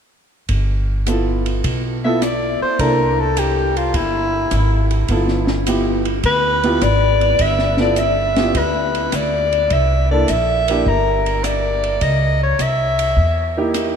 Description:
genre	jazz, small-group swing and bop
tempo	104 BPM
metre	4/4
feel	swing 69% on 8ths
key	G mixolydian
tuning	A4 = 440 Hz
part	upright bass	bass	0.5-14.0 s	G1 to E2	-20 LUFS	equal	none
part	compact cocktail drum kit	drums	0.5-13.9 s	hi-hat, kick drum, ride cymbal, rim click, snare drum	-25 LUFS	equal	none
part	warm baby grand piano	accompaniment	1.1-14.0 s	Bb3 to A4	-22 LUFS	right 2 dB	none
part	mellow soprano saxophone	melody	2.0-13.6 s	E4 to E5	-18 LUFS	left 2 dB	none
room	wet cathedral reverb, RT60 6.2 s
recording	in a vast, echoing space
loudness	-15 LUFS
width	side -7 dB against mid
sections	0.5-14.0 A section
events	none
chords	0.5 G13; 2.8 C13; 5.1 G13; 9.7 C9; 12.0 C#dim7

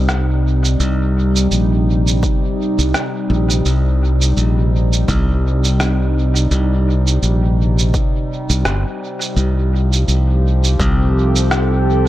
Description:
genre	ambient dub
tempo	84 BPM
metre	4/4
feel	swing 57% on 16ths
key	C dorian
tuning	A4 = 437 Hz
part	warbly tape-like pad	sustained chords	0.0-12.1 s	C3 to A4	-20 LUFS	equal	chorus, built-in reverb
part	modern bright fingered electric bass	bass	0.0-12.1 s	G1 to C2	-14 LUFS	equal	none
part	electronic rim click and shaker	drums	0.1-11.7 s	none	-23 LUFS	right 2 dB	overdrive, dub echo
part	electronic kick drum	drums	2.2-11.0 s	none	-19 LUFS	equal	none
room	little or no reverb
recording	none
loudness	-13 LUFS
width	side -14 dB against mid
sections	0.0-12.1 A section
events	none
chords	0.0 Cm7; 9.4 Fadd9/C

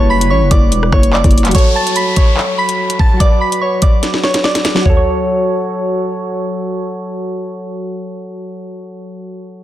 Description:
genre	hip hop, drill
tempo	145 BPM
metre	4/4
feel	half-time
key	F# phrygian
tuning	A4 = 440 Hz
part	soft synth bell	melody	0.0-6.1 s	C#5 to B6	-17 LUFS	equal	chorus, low-pass filter, digital delay
part	soft electric-piano-like synth keys	accompaniment	0.0-9.6 s	F#3 to D5	-20 LUFS	right 1 dB	chorus, low-pass filter
part	warbly tape-like pad	sustained chords	0.0-1.5 s	G3 to B4	-25 LUFS	right 2 dB	chorus, built-in reverb
part	growling 808-style bass	bass	0.0-1.5 s	E1 to A1	-14 LUFS	equal	none
part	drill drum kit	drums	0.2-5.0 s	handclaps, hi-hat, kick drum, rim click, snare drum, toms	-12 LUFS	equal	none
part	downlifter	sound effects	1.5-4.9 s	none	-25 LUFS	left 1 dB	none
room	little or no reverb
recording	dense, heavily limited modern master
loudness	-11 LUFS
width	side -13 dB against mid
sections	0.0-1.5 A section; 1.5-4.9 B section; 4.9-8.2 C section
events	filter sweep 1.5-4.9; drum fill 4.0-4.9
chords	0.0 Em/F#; 1.5 F#m; 3.2 Bm/F#; 4.9 F#m

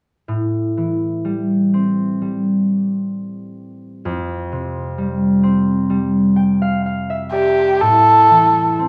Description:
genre	celtic folk, Celtic slow air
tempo	61-66 BPM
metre	4/4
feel	rubato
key	A minor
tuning	A4 = 441 Hz
part	concert harp	accompaniment	0.3-8.9 s	F2 to G5	-20 LUFS	equal	none
part	dark erhu	melody	7.3-8.8 s	G4 to A4	-13 LUFS	equal	none
room	moderate large studio reverb, RT60 0.8 s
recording	band playing live in one room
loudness	-17 LUFS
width	mono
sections	0.3-7.8 A section; 7.8-8.9 B section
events	harp fill 5.9-7.8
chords	0.3 Am7; 4.1 Fsus2; 7.8 Am

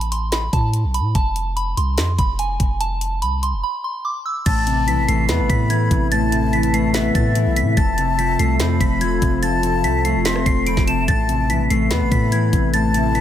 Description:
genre	hip hop, trap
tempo	145 BPM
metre	4/4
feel	half-time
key	A harmonic minor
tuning	A4 = 440 Hz
part	soft synth bell	melody	0.0-13.2 s	G#5 to E7	-24 LUFS	right 2 dB	chorus
part	long sustained 808-style bass	bass	0.0-13.2 s	F1 to A2	-21 LUFS	equal	none
part	trap drum kit	drums	0.0-13.2 s	crash cymbal, hi-hat, kick drum, rim click, snare drum	-21 LUFS	equal	none
part	breathy jazz flute	second line	4.5-13.2 s	E5 to C6	-25 LUFS	left 7 dB	ping-pong delay
part	mellow electric guitar	accompaniment	4.5-13.2 s	F2 to C4	-21 LUFS	left 2 dB	none
part	dark analog pad	sustained chords	4.7-13.2 s	F3 to E5	-26 LUFS	equal	chorus
room	digital ambience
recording	none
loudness	-16 LUFS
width	side -10 dB against mid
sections	0.0-4.5 A section; 4.5-13.2 B section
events	break 3.6-4.5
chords	0.0 Asus2; 1.2 F; 4.5 Amadd9; 7.8 F; 11.1 Amadd9

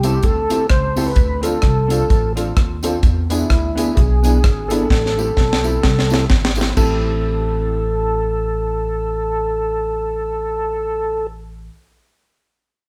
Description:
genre	ska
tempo	128 BPM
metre	4/4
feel	swing 58% on 8ths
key	A minor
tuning	A4 = 440 Hz
part	mellow tonewheel organ	melody	0.0-11.3 s	E4 to C5	-23 LUFS	equal	overdrive, chorus vibrato, slow rotary speaker
part	hollow-body jazz guitar	accompaniment	0.0-11.7 s	B3 to A4	-28 LUFS	equal	dub echo
part	honky-tonk upright piano	stabs	0.0-11.7 s	A3 to A4	-29 LUFS	equal	none
part	upright bass	bass	0.0-11.7 s	G#1 to E2	-23 LUFS	equal	none
part	deep reggae drum kit	drums	0.0-6.9 s	crash cymbal, hi-hat, kick drum, rim click, snare drum	-19 LUFS	equal	none
part	tambourine	percussion	0.0-7.0 s	none	-38 LUFS	equal	dub echo
room	light reverb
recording	band playing live in one room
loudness	-18 LUFS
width	mono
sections	0.0-6.8 A section; 6.8-10.5 B section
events	drum fill 4.9-6.8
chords	0.0 Am7; 1.2 Dm7; 3.0 E7; 4.9 Am7

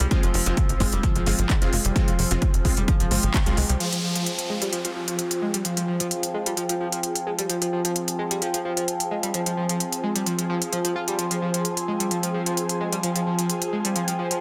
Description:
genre	driving peak-time techno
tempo	130 BPM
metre	4/4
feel	straight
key	F minor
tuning	A4 = 440 Hz
part	overdriven synth lead	riff	0.0-14.4 s	F3 to F4	-30 LUFS	equal	distortion, tube saturation, subtle chorus, sidechain pumping, tape echo
part	tight sequencer bass	bass	0.0-3.8 s	F1 to C2	-27 LUFS	equal	sidechain pumping
part	overtone-sweeping drone	drone	0.0-14.4 s	F3 to C4	-34 LUFS	equal	chorus, built-in reverb, phaser, sidechain pumping
part	techno drum kit	drums	0.0-14.4 s	handclaps, hi-hat	-29 LUFS	equal	overdrive, sidechain pumping on hats
part	ethereal airy pad	texture	0.0-14.4 s	F4 to Ab5	-34 LUFS	equal	ensemble chorus, built-in reverb, phaser, sidechain pumping
part	rave stab	stabs	0.1-3.6 s	Ab3 to F4	-34 LUFS	equal	chorus, built-in reverb, sidechain pumping, tape echo
part	electronic kick drum	drums	0.1-3.4 s	none	-24 LUFS	equal	overdrive
part	downlifter	sound effects	3.8-7.5 s	none	-34 LUFS	equal	none
room	moderate lush hall reverb, RT60 2.2 s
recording	dense, heavily limited modern master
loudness	-24 LUFS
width	mono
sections	0.0-3.8 A section; 3.8-14.4 B section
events	band accent 3.3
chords	0.0 Fm

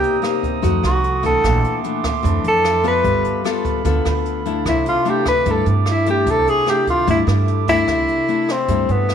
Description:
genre	bossa nova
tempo	149 BPM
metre	4/4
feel	straight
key	C major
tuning	A4 = 442 Hz
part	breathy tenor saxophone	melody	0.0-9.1 s	B3 to B4	-18 LUFS	equal	none
part	nylon-string guitar	accompaniment	0.0-9.1 s	F2 to A4	-22 LUFS	left 9 dB	none
part	glass harmonica	sustained chords	0.0-7.8 s	A4 to Eb6	-26 LUFS	right 12 dB	none
part	jazz brush drum kit	drums	0.0-9.1 s	hi-hat, kick drum, rim click	-26 LUFS	right 2 dB	none
part	upright bass	bass	0.6-9.1 s	G1 to G2	-20 LUFS	right 2 dB	none
room	moderate echo chamber reverb, RT60 1.9 s, small room ambience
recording	1960s-style stereo with parts hard left and right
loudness	-15 LUFS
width	side -8 dB against mid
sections	0.0-7.9 A section; 7.9-9.1 B section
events	tenor saxophone solo 0.0-7.9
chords	0.0 Cm7; 0.6 F7b9; 1.4 Bbmaj9#11; 3.0 G9; 4.7 C69

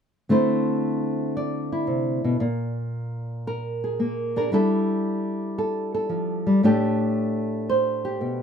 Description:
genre	solo jazz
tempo	114 BPM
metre	4/4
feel	swing 69% on 8ths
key	unclear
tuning	A4 = 440 Hz
part	nylon-string guitar	solo	0.3-8.4 s	A2 to D5	-22 LUFS	equal	none
room	moderate club reverb, RT60 0.5 s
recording	none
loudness	-22 LUFS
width	side -7 dB against mid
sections	0.3-8.4 A section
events	none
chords	0.3 Dsus2; 2.4 Bb7; 4.5 Gsus2; 6.6 A7sus4

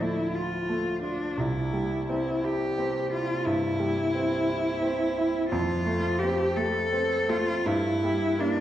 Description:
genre	classical, romantic duo for cello and grand piano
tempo	58 BPM (dotted quarters)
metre	12/8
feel	rubato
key	unclear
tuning	A4 = 440 Hz
part	rich cello	melody	0.0-8.6 s	D4 to A4	-27 LUFS	left 1 dB	none
part	bright concert grand piano	accompaniment	0.0-8.6 s	C2 to F4	-28 LUFS	right 1 dB	none
room	wet recital hall reverb, RT60 1.7 s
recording	heard from further back in the room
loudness	-24 LUFS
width	side -12 dB against mid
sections	0.0-8.6 A section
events	none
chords	0.0 Dm; 1.4 C; 5.5 F; 7.7 Edim/G

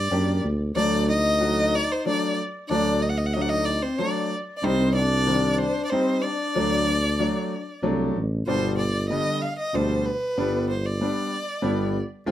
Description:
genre	klezmer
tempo	94 BPM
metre	3/4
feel	straight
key	G major from 8.5 s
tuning	A4 = 440 Hz
part	warm violin	melody	0.0-12.0 s	B4 to F#5	-26 LUFS	equal	plate reverb
part	mellow tuba	bass	0.0-12.3 s	F1 to F#2	-25 LUFS	right 1 dB	none
part	bright upright piano	accompaniment	0.1-12.3 s	B2 to G4	-27 LUFS	left 1 dB	none
part	warm trombone	second line	0.8-7.8 s	C4 to F#4	-28 LUFS	left 3 dB	none
room	moderate small room reverb, RT60 0.6 s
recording	none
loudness	-22 LUFS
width	side -12 dB against mid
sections	0.0-8.5 A section; 8.5-12.3 B section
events	speeding up 0.0-12.3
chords	0.0 Gm; 0.8 D; 4.6 Cm; 6.6 D; 8.5 G

